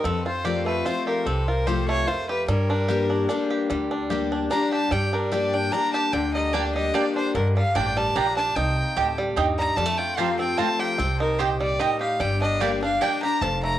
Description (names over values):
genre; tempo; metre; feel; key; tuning
bluegrass; 148 BPM; 3/4; straight; G minor; A4 = 440 Hz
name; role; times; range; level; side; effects
bluegrass banjo; melody; 0.0-13.8 s; D3 to G4; -28 LUFS; right 2 dB; none
clear fiddle; melody; 0.0-13.8 s; A4 to Bb5; -26 LUFS; equal; analog delay
picked steel-string acoustic guitar; accompaniment; 0.0-13.8 s; F2 to G4; -27 LUFS; left 4 dB; cassette tape
upright bass; bass; 0.0-13.8 s; F1 to G2; -28 LUFS; right 1 dB; none
mandolin; stabs; 6.5-13.1 s; Bb3 to A5; -26 LUFS; right 7 dB; cassette tape
room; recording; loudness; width
moderate studio reverb, RT60 0.5 s; home recording on cassette; -21 LUFS; side -12 dB against mid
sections
0.0-13.8 A section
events
fiddle solo 0.0-13.8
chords
0.0 F; 2.5 Gm; 8.6 Cm; 9.8 F; 11.0 Cm; 12.2 Gm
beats
| 0.05 0.45 0.86 | 1.26 1.67 2.08 | 2.48 2.89 3.29 | 3.70 4.11 4.51 | 4.92 5.32 5.73 | 6.13 6.54 6.94 | 7.35 7.75 8.16 | 8.56 8.97 9.37 | 9.78 10.18 10.59 | 10.99 11.39 11.80 | 12.21 12.61 13.02 | 13.42